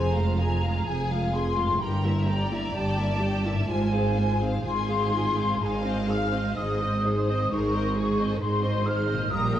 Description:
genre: classical, slow romantic movement for symphony orchestra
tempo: 64 BPM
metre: 4/4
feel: rubato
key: unclear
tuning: A4 = 440 Hz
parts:
  - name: warm studio violin section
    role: melody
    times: 0.0-9.6 s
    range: C5 to Bb5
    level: -37 LUFS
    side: left 2 dB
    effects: none
  - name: mellow hollow flute section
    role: second line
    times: 0.0-9.6 s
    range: Ab5 to F6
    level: -30 LUFS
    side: left 1 dB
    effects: none
  - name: warm studio violin section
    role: second line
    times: 0.0-9.6 s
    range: Ab4 to F5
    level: -35 LUFS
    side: left 3 dB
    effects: none
  - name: rich studio viola section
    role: accompaniment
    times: 0.0-9.6 s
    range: F3 to C5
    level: -31 LUFS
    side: left 1 dB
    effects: none
  - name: concert harp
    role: arpeggios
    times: 0.0-9.6 s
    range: G2 to E5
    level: -37 LUFS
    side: left 4 dB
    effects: none
  - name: warm studio cello section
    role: bass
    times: 0.0-9.6 s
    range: F2 to Bb2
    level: -30 LUFS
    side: right 2 dB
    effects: none
  - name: warm studio double bass section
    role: bass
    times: 0.0-9.6 s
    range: F1 to Bb1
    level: -29 LUFS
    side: right 2 dB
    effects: none
room: moderate scoring stage reverb, RT60 2.1 s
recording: dark, warm production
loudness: -23 LUFS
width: side -11 dB against mid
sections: 0.0-9.6 A section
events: none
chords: 0.0 Fm; 1.8 Edim/G; 3.7 Fm/Ab; 5.6 Ab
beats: 0.86 | 1.81 2.75 3.70 4.65 | 5.61 6.58 7.52 8.41 | 9.31

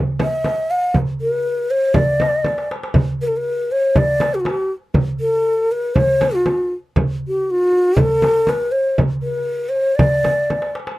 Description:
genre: Arabic maqam ensemble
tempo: 119 BPM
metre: 4/4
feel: straight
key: D maqam huzam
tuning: A4 = 440 Hz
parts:
  - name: darbuka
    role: percussion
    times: 0.1-11.0 s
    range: none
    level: -21 LUFS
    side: equal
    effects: none
  - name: breathy mellow ney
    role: melody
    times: 0.2-10.7 s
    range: F4+47c to F5+49c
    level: -17 LUFS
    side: left 1 dB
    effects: none
  - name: frame drum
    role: percussion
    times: 0.2-10.6 s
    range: none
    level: -20 LUFS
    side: right 1 dB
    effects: none
room: light reverb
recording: close, detailed microphones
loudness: -16 LUFS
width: side -18 dB against mid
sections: 0.0-11.0 A section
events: drum fill 2.4-2.9, 10.5-11.0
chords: none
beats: 0.45 | 0.95 1.45 1.95 2.45 | 2.95 3.45 3.95 4.45 | 4.96 5.46 5.96 6.46 | 6.97 7.47 7.97 8.48 | 8.98 9.48 9.99 10.49

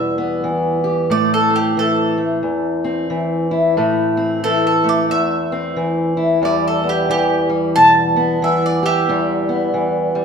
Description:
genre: acoustic country blues, solo or duo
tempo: 90 BPM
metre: 4/4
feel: swing 60% on 8ths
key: E minor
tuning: A4 = 439 Hz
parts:
  - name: mandolin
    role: melody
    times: 0.0-10.1 s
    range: G4 to A5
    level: -17 LUFS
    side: right 2 dB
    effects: none
  - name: fingerpicked steel-string acoustic guitar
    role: accompaniment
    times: 0.0-10.2 s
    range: E2 to G4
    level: -17 LUFS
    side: left 1 dB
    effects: none
room: wet recital hall reverb, RT60 1.4 s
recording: none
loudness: -14 LUFS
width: side -6 dB against mid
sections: 0.0-10.2 A section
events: none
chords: 0.0 Em; 1.1 Am; 6.4 Em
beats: 0.44 | 1.10 1.77 2.44 3.10 | 3.77 4.43 5.10 5.76 | 6.43 7.09 7.75 8.42 | 9.08 9.74

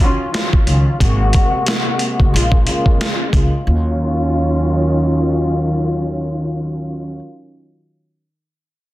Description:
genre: hip hop, boom-bap hip-hop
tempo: 90 BPM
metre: 4/4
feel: swing 57% on 16ths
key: Eb dorian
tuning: A4 = 440 Hz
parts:
  - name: warm studio string section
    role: accompaniment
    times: 0.0-7.1 s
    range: C3 to Gb4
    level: -19 LUFS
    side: equal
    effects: cassette tape, high-pass filter, low-pass filter
  - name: boom bap sampler-style drum kit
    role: drums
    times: 0.0-3.5 s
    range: hi-hat, kick drum, snare drum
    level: -15 LUFS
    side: equal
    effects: none
  - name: upright bass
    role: bass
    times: 0.7-7.2 s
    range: Gb1 to Eb2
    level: -18 LUFS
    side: equal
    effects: none
room: little or no reverb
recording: dense, heavily limited modern master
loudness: -14 LUFS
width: side -16 dB against mid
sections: 0.0-3.7 A section; 3.7-6.3 B section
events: filter sweep on string section 0.0-3.7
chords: 0.0 Ebm9; 1.0 Ab9; 2.3 Bbm7; 3.7 Ebm9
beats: 0.34 | 1.00 1.67 2.33 3.00 | 3.67 4.33 5.00 5.67

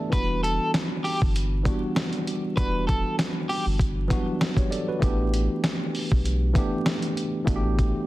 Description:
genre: hip hop, boom-bap hip-hop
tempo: 98 BPM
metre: 4/4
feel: swing 54% on 16ths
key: E minor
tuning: A4 = 440 Hz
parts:
  - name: tine electric piano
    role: accompaniment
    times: 0.0-8.1 s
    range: E3 to A5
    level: -28 LUFS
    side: equal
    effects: overdrive, fast stereo tremolo, cassette tape
  - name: electric guitar at the edge of break-up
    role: melody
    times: 0.1-3.6 s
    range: G4 to B4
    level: -30 LUFS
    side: equal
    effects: tremolo, tape echo
  - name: warm sub bass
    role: bass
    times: 0.1-7.9 s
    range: E1 to B1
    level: -26 LUFS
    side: equal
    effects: none
  - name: dusty soul sampler-style drum kit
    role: drums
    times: 0.1-7.9 s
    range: hi-hat, kick drum, snare drum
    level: -25 LUFS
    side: equal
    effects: none
room: digital ambience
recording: dense, heavily limited modern master, vinyl crackle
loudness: -22 LUFS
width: side -17 dB against mid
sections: 0.0-8.1 A section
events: none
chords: 0.1 Em7; 5.0 A7sus4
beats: | 0.12 0.74 1.35 1.96 | 2.57 3.19 3.80 4.41 | 5.02 5.63 6.25 6.86 | 7.47

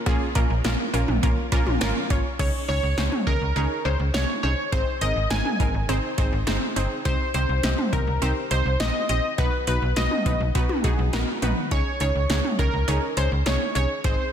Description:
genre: synth-pop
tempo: 103 BPM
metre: 4/4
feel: straight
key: unclear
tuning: A4 = 441 Hz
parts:
  - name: wide unison pluck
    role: accompaniment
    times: 0.1-14.3 s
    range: Bb3 to Eb5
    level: -28 LUFS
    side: right 1 dB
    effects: none
  - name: slap-like FM bass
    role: bass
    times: 0.1-14.2 s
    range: G1 to Db2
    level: -25 LUFS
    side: equal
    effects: none
  - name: electro analog drum machine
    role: drums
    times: 0.1-14.2 s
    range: cowbell, crash cymbal, hi-hat, kick drum, snare drum, toms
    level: -25 LUFS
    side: equal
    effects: overdrive
  - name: funky polysynth comp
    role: melody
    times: 2.4-14.3 s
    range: Bb4 to Ab5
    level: -27 LUFS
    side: equal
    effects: chorus, digital delay
room: light reverb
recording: dense, heavily limited modern master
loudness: -21 LUFS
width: side -8 dB against mid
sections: 0.0-2.4 A section; 2.4-14.3 B section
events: none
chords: 0.0 Bbm; 2.4 Dbsus2; 4.7 Ab; 7.1 Cm7; 9.4 B; 11.7 Dbsus2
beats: | 0.06 0.65 1.23 1.81 | 2.39 2.98 3.56 4.14 | 4.72 5.31 5.89 6.47 | 7.05 7.64 8.22 8.80 | 9.38 9.97 10.55 11.13 | 11.71 12.30 12.88 13.46 | 14.04

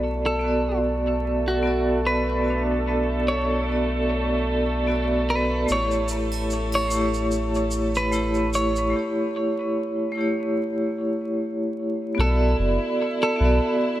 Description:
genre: trip hop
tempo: 74 BPM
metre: 4/4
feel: swing 55% on 16ths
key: B minor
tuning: A4 = 445 Hz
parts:
  - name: vibraphone with hard mallets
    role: accompaniment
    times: 0.0-14.0 s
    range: A3 to D5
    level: -24 LUFS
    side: right 1 dB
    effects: tremolo
  - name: warm chamber violin section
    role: sustained chords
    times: 0.0-14.0 s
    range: A3 to A4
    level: -31 LUFS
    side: equal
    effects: low-pass filter
  - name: soft dub sub bass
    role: bass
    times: 0.0-13.6 s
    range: F#1 to B1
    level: -26 LUFS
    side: equal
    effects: none
  - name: clean electric guitar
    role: melody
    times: 0.3-13.8 s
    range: F#4 to C#5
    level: -27 LUFS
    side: equal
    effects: tape echo
  - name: tube shaker and triangle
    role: percussion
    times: 5.7-8.9 s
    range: none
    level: -36 LUFS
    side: right 4 dB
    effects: none
room: light reverb, small room ambience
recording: vinyl crackle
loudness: -21 LUFS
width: side -14 dB against mid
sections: 0.0-12.2 A section; 12.2-14.0 B section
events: break 8.9-12.2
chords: 0.0 Bm7; 5.7 A7; 12.2 Bm7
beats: 0.02 0.83 1.64 | 2.45 3.26 4.07 4.88 | 5.69 6.50 7.32 8.13 | 8.94 9.75 10.56 11.37 | 12.18 12.99 13.80

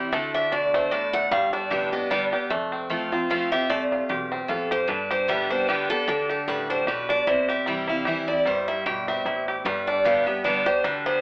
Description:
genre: bluegrass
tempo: 151 BPM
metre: 3/4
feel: swing 55% on 8ths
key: G mixolydian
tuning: A4 = 435 Hz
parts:
  - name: bluegrass banjo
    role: melody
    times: 0.0-11.2 s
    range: G3 to G4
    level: -26 LUFS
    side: equal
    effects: none
  - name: picked steel-string acoustic guitar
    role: accompaniment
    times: 0.0-11.2 s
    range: E2 to G4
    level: -28 LUFS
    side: equal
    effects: none
  - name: upright bass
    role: bass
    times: 0.0-11.2 s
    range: F1 to D2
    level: -42 LUFS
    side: equal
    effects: none
  - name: picked steel-string acoustic guitar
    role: melody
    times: 0.1-11.2 s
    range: G4 to G5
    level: -24 LUFS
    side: equal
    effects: none
room: moderate studio reverb, RT60 0.5 s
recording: telephone sound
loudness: -21 LUFS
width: side -30 dB against mid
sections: 0.0-2.5 A section; 2.5-11.2 B section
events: none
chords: 0.1 D5; 1.3 Gadd9; 2.5 F; 4.9 G; 7.3 C; 9.7 G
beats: | 0.13 0.52 0.92 | 1.32 1.72 2.11 | 2.51 2.91 3.30 | 3.70 4.10 4.49 | 4.89 5.29 5.68 | 6.08 6.48 6.88 | 7.27 7.67 8.06 | 8.46 8.86 9.26 | 9.65 10.05 10.45 | 10.84

